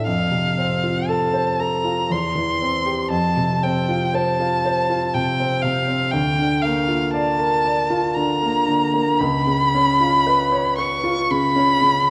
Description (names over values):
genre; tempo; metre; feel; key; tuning
classical, romantic duo for violin and grand piano; 59 BPM; 3/4; rubato; unclear; A4 = 441 Hz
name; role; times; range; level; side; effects
warm violin; melody; 0.0-12.1 s; F5 to Db6; -22 LUFS; equal; none
clear grand piano; accompaniment; 0.0-12.1 s; Db2 to D5; -23 LUFS; equal; none
room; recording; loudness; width
wet recital hall reverb, RT60 1.7 s; dark, warm production; -20 LUFS; mono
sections
0.0-12.1 A section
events
none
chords
0.1 F; 2.1 C/E; 3.1 F; 6.1 Bb/D; 9.2 Db7